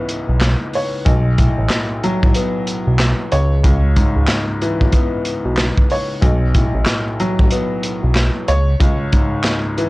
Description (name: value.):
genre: hip hop, boom-bap hip-hop.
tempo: 93 BPM.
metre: 4/4.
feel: swing 60% on 16ths.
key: unclear.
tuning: A4 = 440 Hz.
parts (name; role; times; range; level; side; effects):
warm upright piano; accompaniment; 0.0-9.9 s; B1 to C#5; -19 LUFS; left 1 dB; cassette tape.
crunchy breakbeat drum kit; drums; 0.1-9.9 s; handclaps, hi-hat, kick drum, snare drum; -17 LUFS; equal; none.
fat analog bass; bass; 0.3-8.8 s; A1 to C#2; -16 LUFS; equal; tube saturation.
room: little or no reverb.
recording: dry, gritty hardware recording, cassette tape.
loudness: -14 LUFS.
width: side -20 dB against mid.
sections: 0.0-9.9 A section.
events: none.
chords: 0.0 C#m7; 1.1 B5; 3.3 C#m7; 6.2 B5; 8.5 C#5.